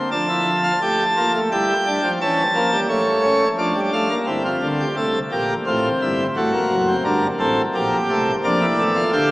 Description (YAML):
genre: classical, baroque-style 4-part fugue for pipe organ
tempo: 86 BPM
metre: 3/4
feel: straight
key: D minor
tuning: A4 = 442 Hz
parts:
  - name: pipe organ, plenum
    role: solo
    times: 0.0-9.3 s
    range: F#1 to A5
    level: -17 LUFS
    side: equal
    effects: none
room: wet cathedral reverb, RT60 4.6 s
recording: small speaker sound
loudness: -17 LUFS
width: side -19 dB against mid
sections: 0.1-4.3 A section; 4.3-9.3 B section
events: none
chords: 0.1 Dm/F; 1.5 Em7; 2.2 A7/E; 3.6 Dm/F; 4.3 C7/G; 5.7 F/A; 6.4 D7; 7.8 Gm/Bb; 8.4 Dm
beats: | 0.11 0.82 1.51 | 2.20 2.89 3.58 | 4.27 4.97 5.67 | 6.37 7.06 7.75 | 8.45 9.13